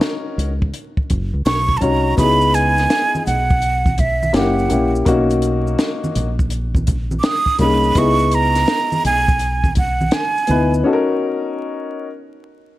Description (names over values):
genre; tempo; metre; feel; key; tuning
hip hop, jazz-hop; 83 BPM; 4/4; swing 65% on 16ths; C# dorian; A4 = 440 Hz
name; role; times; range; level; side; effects
dark upright piano; accompaniment; 0.0-12.1 s; A#3 to C#5; -19 LUFS; left 2 dB; none
compact cocktail drum kit; drums; 0.0-10.7 s; hi-hat, kick drum, snare drum; -20 LUFS; equal; none
deep dub fingered electric bass; bass; 0.4-10.8 s; F#1 to D2; -20 LUFS; equal; none
breathy mellow silver concert flute; melody; 1.5-10.7 s; E5 to D#6; -18 LUFS; right 3 dB; none
maracas and congas; percussion; 2.2-10.8 s; none; -27 LUFS; right 1 dB; none
room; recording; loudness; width
light reverb, studio reverb; vinyl crackle; -15 LUFS; side -16 dB against mid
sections
0.0-12.8 A section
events
break 10.9-12.8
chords
0.0 F#6; 2.2 C#m9; 4.3 F#7b9; 5.1 Bmaj9; 8.0 C#m9; 10.9 F#6/C#